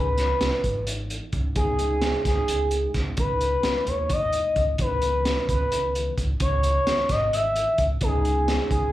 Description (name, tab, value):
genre	progressive instrumental, band music in an uneven meter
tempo	260 BPM (eighths)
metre	7/8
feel	straight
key	C# minor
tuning	A4 = 439 Hz
part	expressive portamento lead	melody	0.0-8.9 s	G#4 to E5	-24 LUFS	equal	chorus, slapback echo
part	overdriven tine electric piano	accompaniment	0.0-8.9 s	D#3 to D#4	-36 LUFS	equal	ensemble chorus, slapback echo
part	upright bass	bass	0.0-8.9 s	G#1 to D#2	-27 LUFS	equal	none
part	crunchy breakbeat drum kit	drums	0.2-8.8 s	hi-hat, kick drum, snare drum	-28 LUFS	equal	none
room	light reverb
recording	live gig heard through the venue's PA, club reverb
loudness	-21 LUFS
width	side -14 dB against mid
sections	0.0-8.9 A section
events	none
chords	0.0 C#m7; 1.6 G#m/C#; 4.8 C#m7; 8.0 G#m/C#